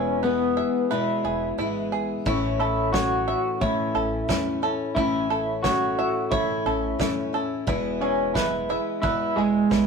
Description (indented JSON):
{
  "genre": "indie folk with a building arrangement",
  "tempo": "89 BPM",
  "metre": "4/4",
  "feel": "straight",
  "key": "A major",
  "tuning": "A4 = 440 Hz",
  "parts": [
    { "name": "electric guitar through a small old amp", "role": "melody", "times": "0.0-9.9 s", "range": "G#3 to F#4", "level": "-24 LUFS", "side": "equal", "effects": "tremolo" },
    { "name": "fingerpicked steel-string acoustic guitar", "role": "accompaniment", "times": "0.0-9.9 s", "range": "A2 to C#5", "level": "-31 LUFS", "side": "left 3 dB", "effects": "none" },
    { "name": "picked steel-string acoustic guitar", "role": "accompaniment", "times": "0.0-9.9 s", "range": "E2 to E4", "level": "-30 LUFS", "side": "left 2 dB", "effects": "none" },
    { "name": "bluegrass banjo", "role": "arpeggios", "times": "0.0-9.9 s", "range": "E4 to E5", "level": "-30 LUFS", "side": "right 3 dB", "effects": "none" },
    { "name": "upright bass", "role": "bass", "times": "0.0-9.9 s", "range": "E1 to E2", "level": "-36 LUFS", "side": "equal", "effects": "none" },
    { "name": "natural country drum kit", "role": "drums", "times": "2.3-9.9 s", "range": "kick drum, snare drum", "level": "-29 LUFS", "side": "equal", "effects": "none" }
  ],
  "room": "wet small room reverb, RT60 0.5 s",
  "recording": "rough rehearsal-room recording",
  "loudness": "-22 LUFS",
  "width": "side -5 dB against mid",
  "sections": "0.0-9.9 A section",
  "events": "none",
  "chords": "0.0 E; 2.3 A; 7.7 E"
}